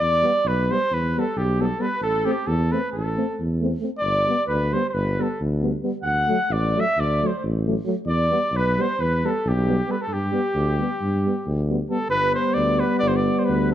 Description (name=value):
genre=balkan folk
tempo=267 BPM (eighths)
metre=9/8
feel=straight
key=G major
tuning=A4 = 441 Hz
part: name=clear flugelhorn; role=melody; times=0.0-13.7 s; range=G4 to F#5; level=-24 LUFS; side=equal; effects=none
part: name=warm clarinet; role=second line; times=0.0-13.7 s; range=G4 to F#5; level=-28 LUFS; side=right 3 dB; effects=none
part: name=mellow tuba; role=bass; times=0.0-13.7 s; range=G1 to G2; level=-24 LUFS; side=equal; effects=none
part: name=dark euphonium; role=accompaniment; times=0.2-13.7 s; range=F#3 to A3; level=-30 LUFS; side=right 7 dB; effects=none
part: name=mellow euphonium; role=accompaniment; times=0.2-13.7 s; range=A3 to C4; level=-28 LUFS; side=left 6 dB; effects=none
room=moderate recital hall reverb, RT60 1.4 s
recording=close, detailed microphones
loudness=-20 LUFS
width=side -11 dB against mid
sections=0.0-12.1 A section; 12.1-13.7 B section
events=none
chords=0.0 Em; 2.0 Am; 4.0 G; 6.0 D; 8.1 Em; 10.1 G